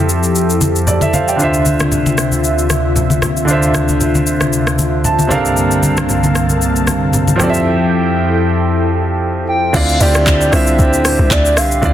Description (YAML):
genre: amapiano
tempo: 115 BPM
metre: 4/4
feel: swing 55% on 16ths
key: D minor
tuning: A4 = 440 Hz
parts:
  - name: clear grand piano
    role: accompaniment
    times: 0.0-11.9 s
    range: C3 to A5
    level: -16 LUFS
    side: right 2 dB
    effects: none
  - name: warm analog pad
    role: sustained chords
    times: 0.0-9.7 s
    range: C2 to A5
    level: -15 LUFS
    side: left 1 dB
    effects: chorus, sidechain pumping
  - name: smooth R&B drum kit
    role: drums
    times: 0.1-11.9 s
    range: crash cymbal, handclaps, hi-hat, kick drum, rim click, shaker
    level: -18 LUFS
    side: left 1 dB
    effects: soft clipping on snare
  - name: congas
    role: percussion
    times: 0.6-7.5 s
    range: none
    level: -19 LUFS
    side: left 2 dB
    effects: none
  - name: hollow clarinet-like synth lead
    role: melody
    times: 9.5-11.9 s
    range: C5 to G5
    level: -16 LUFS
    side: equal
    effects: chorus, tape echo
  - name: hollow log drum bass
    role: bass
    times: 9.7-11.9 s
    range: C2 to D2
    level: -15 LUFS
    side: equal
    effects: none
room: light reverb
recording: dense, heavily limited modern master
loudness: -11 LUFS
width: side -11 dB against mid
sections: 0.0-9.7 A section; 9.7-11.9 B section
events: grand piano fill 4.8-5.6; drop 9.7-11.9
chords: 0.0 Fmaj9; 1.4 Dm9; 5.3 C13sus4; 7.4 Fmaj9; 9.7 Dm9